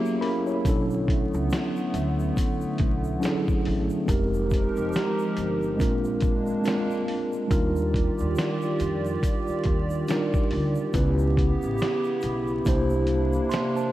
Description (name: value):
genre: lo-fi hip hop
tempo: 70 BPM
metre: 4/4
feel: swing 59% on 16ths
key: unclear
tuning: A4 = 439 Hz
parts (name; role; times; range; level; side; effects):
- mellow tine electric piano; accompaniment; 0.0-13.9 s; F#3 to C6; -27 LUFS; right 1 dB; medium stereo tremolo, cassette tape
- hollow soft pad; sustained chords; 0.0-13.9 s; C3 to D5; -30 LUFS; equal; chorus
- egg shaker; percussion; 0.1-13.9 s; none; -55 LUFS; left 5 dB; none
- dusty soul sampler-style drum kit; drums; 0.2-13.8 s; hi-hat, kick drum, snare drum; -27 LUFS; equal; none
- upright bass; bass; 0.7-13.4 s; F1 to E#2; -28 LUFS; equal; none
room: moderate plate reverb, RT60 3.1 s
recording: vinyl crackle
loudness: -22 LUFS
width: side -14 dB against mid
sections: 0.0-13.9 A section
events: tine electric piano fill 0.0-0.7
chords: 0.0 F#7; 0.7 Bm11; 4.1 Fm11; 5.8 A#9; 7.5 D#maj9; 10.9 C#m7b5; 12.7 C9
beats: | 0.65 1.51 2.37 3.22 | 4.08 4.94 5.80 6.65 | 7.51 8.37 9.22 10.08 | 10.94 11.80 12.65 13.51